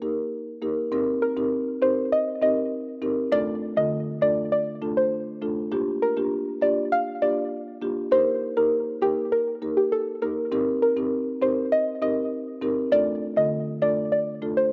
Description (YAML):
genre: dancehall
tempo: 100 BPM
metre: 4/4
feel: straight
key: C dorian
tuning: A4 = 441 Hz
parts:
  - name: marimba with medium mallets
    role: accompaniment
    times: 0.0-14.6 s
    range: D3 to Bb4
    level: -28 LUFS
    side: equal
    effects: cassette tape
  - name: soft round pluck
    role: melody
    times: 1.2-14.7 s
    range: G4 to F5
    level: -25 LUFS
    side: equal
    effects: chorus, cassette tape
room: light reverb, small room ambience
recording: home recording on cassette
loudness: -25 LUFS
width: mono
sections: 0.9-14.7 A section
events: none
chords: 0.0 Eb; 0.9 Cm7; 3.3 Dm; 5.7 Gm7; 8.1 Eb; 10.5 Cm7; 12.9 Dm